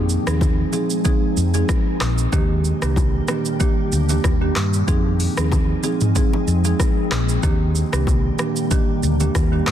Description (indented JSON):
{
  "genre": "afrobeats",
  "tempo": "94 BPM",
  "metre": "4/4",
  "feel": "swing 55% on 16ths",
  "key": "F dorian",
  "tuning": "A4 = 440 Hz",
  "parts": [
    { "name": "glassy FM pad", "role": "sustained chords", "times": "0.0-9.7 s", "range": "Bb2 to Ab4", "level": "-27 LUFS", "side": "left 3 dB", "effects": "ensemble chorus, built-in reverb" },
    { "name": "hollow-body short-scale fingered electric bass", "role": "bass", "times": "0.0-9.7 s", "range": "Bb1 to G2", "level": "-20 LUFS", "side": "left 1 dB", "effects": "none" },
    { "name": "afro-pop drum kit", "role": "drums", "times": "0.1-9.7 s", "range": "handclaps, hi-hat, kick drum, rim click, shaker, toms", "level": "-21 LUFS", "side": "equal", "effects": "soft clipping on snare" },
    { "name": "marimba with medium mallets", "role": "accompaniment", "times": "0.3-9.7 s", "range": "Eb3 to Ab4", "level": "-23 LUFS", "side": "right 4 dB", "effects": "none" },
    { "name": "bongos and congas", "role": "percussion", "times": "0.4-9.5 s", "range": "none", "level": "-31 LUFS", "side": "left 3 dB", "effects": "none" }
  ],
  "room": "little or no reverb",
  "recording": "dense, heavily limited modern master",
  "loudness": "-17 LUFS",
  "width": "side -10 dB against mid",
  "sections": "0.0-9.7 A section",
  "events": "none",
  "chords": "0.0 Fm7; 2.3 Ebmaj7; 4.9 Fm7; 7.4 Ebmaj7",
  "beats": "0.41 1.05 1.69 | 2.33 2.97 3.60 4.24 | 4.88 5.52 6.16 6.80 | 7.43 8.07 8.71 9.35"
}